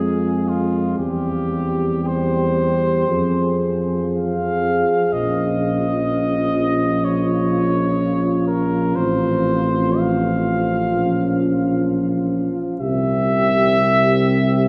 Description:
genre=classical, hymn-like piece for brass band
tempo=54-65 BPM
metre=4/4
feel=rubato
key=F minor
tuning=A4 = 441 Hz
part: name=warm cornet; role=melody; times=0.0-14.7 s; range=F4 to F5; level=-24 LUFS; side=equal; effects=none
part: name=dark French horn section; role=second line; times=0.0-14.7 s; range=F4 to Ab4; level=-28 LUFS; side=equal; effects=none
part: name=dark euphonium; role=accompaniment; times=0.0-14.7 s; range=C4 to Db4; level=-26 LUFS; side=equal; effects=none
part: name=mellow trombone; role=accompaniment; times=0.0-14.7 s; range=C3 to Ab3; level=-29 LUFS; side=equal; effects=none
part: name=warm tuba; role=bass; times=0.0-14.7 s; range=A1 to F2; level=-24 LUFS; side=equal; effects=none
room=wet cathedral reverb, RT60 4.5 s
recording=heard from further back in the room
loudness=-19 LUFS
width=mono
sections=0.0-14.7 A section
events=none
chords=0.0 Fm; 1.0 C/E; 3.1 Fm; 5.1 Bbm; 9.0 F/A; 10.9 Bbm; 12.8 C

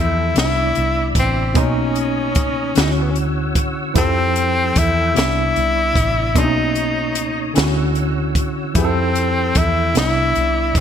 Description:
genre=slow six-eight R&B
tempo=50 BPM (dotted quarters)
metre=6/8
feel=straight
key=unclear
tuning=A4 = 440 Hz
part: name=breathy tenor saxophone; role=melody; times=0.0-10.8 s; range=B3 to E4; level=-20 LUFS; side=left 3 dB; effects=ping-pong delay
part: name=tine electric piano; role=accompaniment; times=0.0-10.8 s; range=B2 to A4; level=-22 LUFS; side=right 1 dB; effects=overdrive, fast stereo tremolo
part: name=tonewheel organ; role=sustained chords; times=0.0-10.8 s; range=A4 to E6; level=-28 LUFS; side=right 1 dB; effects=chorus vibrato, slow rotary speaker
part: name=vintage muted fingered electric bass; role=bass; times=0.0-10.8 s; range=A1 to F2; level=-21 LUFS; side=right 1 dB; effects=none
part: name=compact cocktail drum kit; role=drums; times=0.4-10.8 s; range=hi-hat, kick drum, snare drum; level=-20 LUFS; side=equal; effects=none
room=light reverb, small room ambience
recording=bright 1980s-style digital production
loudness=-15 LUFS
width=side -8 dB against mid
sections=0.0-10.8 A section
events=none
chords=0.4 Cmaj9; 1.6 Bmaj9; 2.8 Dmaj9; 4.0 Fmaj9; 5.2 Cmaj9; 6.4 Bmaj9; 7.6 Dmaj9; 8.8 Fmaj9; 10.0 Cmaj9

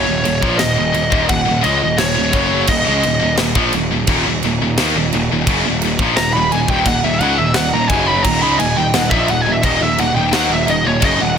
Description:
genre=heavy metal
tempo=86 BPM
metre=4/4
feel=straight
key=Eb minor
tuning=A4 = 440 Hz
part: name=high-gain lead guitar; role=melody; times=0.0-11.3 s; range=Db5 to Cb6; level=-18 LUFS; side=equal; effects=distortion
part: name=heavy high-gain guitar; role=riff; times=0.0-11.4 s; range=Eb2 to Bb3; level=-20 LUFS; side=left 13 dB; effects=distortion
part: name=tight distorted guitar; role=riff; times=0.0-11.4 s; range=Eb2 to Bb3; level=-21 LUFS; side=right 12 dB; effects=distortion
part: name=fuzz picked electric bass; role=bass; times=0.0-11.4 s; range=Eb1 to Eb2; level=-21 LUFS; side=equal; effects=overdrive
part: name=tight metal drum kit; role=drums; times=0.3-11.2 s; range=crash cymbal, kick drum, snare drum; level=-20 LUFS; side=equal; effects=none
part: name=dark studio string section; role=sustained chords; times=4.1-11.4 s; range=Eb4 to Bb5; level=-28 LUFS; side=equal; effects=none
room=small room ambience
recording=none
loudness=-13 LUFS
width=side -7 dB against mid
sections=0.0-11.4 A section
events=lead electric guitar solo 0.0-11.4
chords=0.0 Ebm

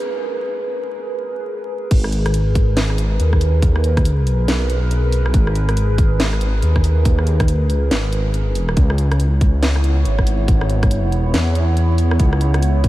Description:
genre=deep dubstep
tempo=140 BPM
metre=4/4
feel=swing 62% on 16ths, half-time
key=G# minor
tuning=A4 = 442 Hz
part: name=dark analog pad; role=sustained chords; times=0.0-12.9 s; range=B3 to C#5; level=-24 LUFS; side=right 1 dB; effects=chorus, phaser
part: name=dark detuned saw bass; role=bass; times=1.9-12.9 s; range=G#1 to E2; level=-16 LUFS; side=equal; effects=tube saturation
part: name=electronic kick drum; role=drums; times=1.9-12.9 s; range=none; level=-15 LUFS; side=equal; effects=high-pass filter on kick, high-pass filter on room
part: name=garage drum kit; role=drums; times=1.9-12.9 s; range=crash cymbal, hi-hat, rim click, snare drum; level=-26 LUFS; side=equal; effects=none
room=light reverb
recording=vinyl crackle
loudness=-15 LUFS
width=side -16 dB against mid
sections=0.0-1.9 A section; 1.9-12.9 B section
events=build-up 0.0-1.9; break 0.2-1.9; drop 1.9-12.9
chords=0.0 G#madd9; 8.8 C#m7

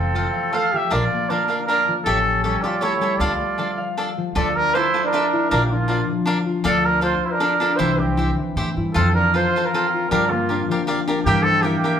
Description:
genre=mexican folk, mariachi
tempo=157 BPM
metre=3/4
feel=rubato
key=D minor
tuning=A4 = 442 Hz
part: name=mellow trumpet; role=melody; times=0.0-12.0 s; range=F4 to F5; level=-21 LUFS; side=right 1 dB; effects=none
part: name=mellow trumpet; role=second line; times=0.0-12.0 s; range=Bb3 to A4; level=-26 LUFS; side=right 5 dB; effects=none
part: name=concert harp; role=arpeggios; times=0.0-12.0 s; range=E3 to F5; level=-24 LUFS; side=left 3 dB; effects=none
part: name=upright bass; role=bass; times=0.0-11.8 s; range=F1 to A2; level=-24 LUFS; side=right 1 dB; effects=none
part: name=cavaquinho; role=accompaniment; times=0.2-12.0 s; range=D4 to G5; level=-26 LUFS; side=left 1 dB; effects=none
room=moderate large studio reverb, RT60 1.0 s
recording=band playing live in one room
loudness=-18 LUFS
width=side -8 dB against mid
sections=0.0-4.4 A section; 4.4-12.0 B section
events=none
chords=0.0 F; 0.9 Bb; 2.0 A7; 3.2 Dm; 4.4 Dmadd9; 5.5 Bb; 6.6 Dm; 7.8 C; 9.0 F; 10.1 Gm7; 11.2 Edim/G

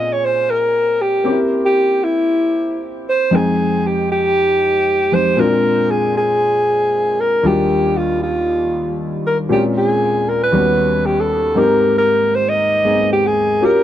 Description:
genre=pop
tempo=116 BPM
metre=4/4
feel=swing 54% on 16ths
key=F minor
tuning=A4 = 440 Hz
part: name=breathy alto saxophone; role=melody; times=0.0-13.8 s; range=E4 to Eb5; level=-15 LUFS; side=equal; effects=none
part: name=warm concert grand piano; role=accompaniment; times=0.0-13.8 s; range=Eb2 to G5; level=-18 LUFS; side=left 1 dB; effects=wide subtle chorus
room=studio ambience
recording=dry, close 1970s-style studio recording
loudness=-14 LUFS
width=side -11 dB against mid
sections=0.0-3.3 A section; 3.3-13.8 B section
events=none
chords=0.0 Bbm9; 1.3 C7; 3.3 Fm9; 5.4 Bb7; 7.4 Ebmaj9; 9.5 Bbm7; 10.5 Eb7alt; 11.6 Abmaj9

